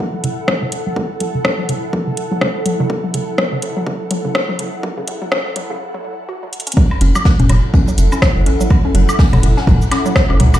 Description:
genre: minimal techno.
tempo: 124 BPM.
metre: 4/4.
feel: swing 59% on 16ths.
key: F# minor.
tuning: A4 = 440 Hz.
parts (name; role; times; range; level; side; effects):
electronic kick drum; drums; 0.0-10.3 s; none; -14 LUFS; equal; overdrive, high-pass filter on kick.
ethereal airy pad; texture; 0.0-10.6 s; E4 to F#5; -26 LUFS; equal; ensemble chorus, built-in reverb, sidechain pumping.
swarming drone; texture; 0.1-5.8 s; A4; -29 LUFS; right 4 dB; built-in reverb, sidechain pumping.
hollow square pluck; riff; 0.1-10.4 s; C#3 to F#4; -22 LUFS; equal; chorus, sidechain pumping, dub echo.
rubbery square bass; bass; 0.2-10.6 s; E1 to F#2; -15 LUFS; equal; sidechain pumping, high-pass filter.
garage drum kit; drums; 0.2-10.6 s; hi-hat, rim click, shaker; -20 LUFS; left 1 dB; none.
jazz brush drum kit; drums; 6.8-10.6 s; hi-hat, ride cymbal, snare drum; -29 LUFS; left 1 dB; sidechain pumping on cymbals, high-pass filter on cymbals, sidechain pumping on hats, high-pass filter on hats, high-pass filter on snare, high-pass filter on room.
electronic woodblock and toms; percussion; 6.9-10.6 s; none; -18 LUFS; left 1 dB; none.
room: light reverb.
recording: played on a big sound system in a bare room, large studio reverb, high-pass filter.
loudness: -13 LUFS.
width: side -12 dB against mid.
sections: 0.0-6.8 A section; 6.8-10.6 B section.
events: build-up 0.0-6.8; filter sweep on synth arpeggio sound 0.0-6.8; filter sweep 0.0-6.8; break 5.8-6.8; drum fill 6.5; drop 6.8-10.6.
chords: 0.0 F#m7.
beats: 0.00 0.48 | 0.96 1.45 1.93 2.42 | 2.90 3.38 3.87 4.35 | 4.83 5.32 5.80 6.29 | 6.77 7.25 7.74 8.22 | 8.71 9.19 9.67 10.16.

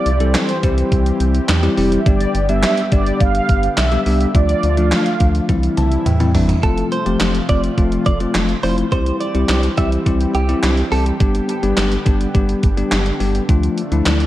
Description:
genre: synth-pop.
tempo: 105 BPM.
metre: 4/4.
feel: straight.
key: unclear.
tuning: A4 = 440 Hz.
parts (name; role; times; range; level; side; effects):
mellow synth brass; melody; 0.0-5.5 s; C5 to F5; -22 LUFS; right 2 dB; chorus, tape echo.
bell-like tine electric piano; accompaniment; 0.0-14.2 s; E3 to A5; -19 LUFS; left 3 dB; none.
lush unison pad; sustained chords; 0.0-14.3 s; C3 to G4; -26 LUFS; right 1 dB; chorus.
rubbery square bass; bass; 0.1-14.3 s; F1 to E2; -19 LUFS; equal; none.
gated 80s digital drum machine; drums; 0.1-14.3 s; handclaps, hi-hat, kick drum, snare drum, toms; -18 LUFS; right 1 dB; gated reverb, gated reverb snare.
direct-recorded clean electric guitar; second line; 6.6-11.0 s; G4 to E5; -24 LUFS; right 3 dB; analog chorus, tape echo.
room: light reverb, digital ambience.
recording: dark, warm production.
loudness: -14 LUFS.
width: side -14 dB against mid.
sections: 0.0-6.6 A section; 6.6-14.3 B section.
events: drum fill 5.5-6.6; tine electric piano fill 5.5-6.6.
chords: 0.0 C; 2.1 G; 4.3 Dm; 5.5 C; 6.6 F; 8.9 C; 11.2 G; 13.5 Dm.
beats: 0.35 0.92 1.49 | 2.06 2.63 3.20 3.77 | 4.35 4.92 5.49 6.06 | 6.63 7.20 7.78 8.35 | 8.92 9.49 10.06 10.63 | 11.20 11.78 12.35 12.92 | 13.49 14.06.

